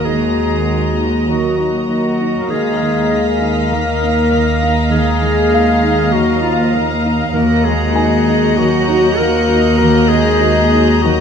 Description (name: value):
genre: cinematic, suspense film score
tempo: 98 BPM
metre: 4/4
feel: straight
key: Eb minor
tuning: A4 = 442 Hz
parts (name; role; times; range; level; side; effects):
- rich studio violin section; melody; 0.0-11.2 s; Bb5; -25 LUFS; left 5 dB; none
- clear clarinet; second line; 0.0-11.2 s; F4 to Bb4; -19 LUFS; left 2 dB; none
- warm studio violin section; second line; 0.0-11.2 s; Eb5; -24 LUFS; equal; none
- warm studio viola section; accompaniment; 0.0-11.2 s; Gb4 to F5; -22 LUFS; equal; none
- evolving wavetable pad; sustained chords; 0.0-11.2 s; Gb4 to F5; -24 LUFS; right 2 dB; chorus, built-in reverb, phaser
- warm French horn section; sustained chords; 0.0-11.2 s; F3 to Bb3; -21 LUFS; left 4 dB; none
- dark studio cello section; bass; 0.0-11.2 s; Eb2; -18 LUFS; equal; none
- dark studio double bass section; bass; 0.0-11.2 s; Eb2; -20 LUFS; right 4 dB; none
- felt-muted upright piano; texture; 0.0-11.2 s; F5 to Ab5; -26 LUFS; left 2 dB; none
- warm studio cello section; riff; 0.1-11.2 s; Eb3 to Eb4; -25 LUFS; right 2 dB; none
- clear studio violin section; texture; 2.5-11.2 s; Gb6 to Db7; -28 LUFS; left 1 dB; none
room: moderate recital hall reverb, RT60 1.5 s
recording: dark, warm production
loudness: -12 LUFS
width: side -7 dB against mid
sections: 0.0-11.2 A section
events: none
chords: 0.0 Ebm; 2.5 Bbsus4/Eb; 7.3 Ebm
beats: | 0.05 0.67 1.27 1.89 | 2.50 3.11 3.71 4.32 | 4.92 5.52 6.13 6.74 | 7.35 7.96 8.57 9.18 | 9.79 10.40 11.02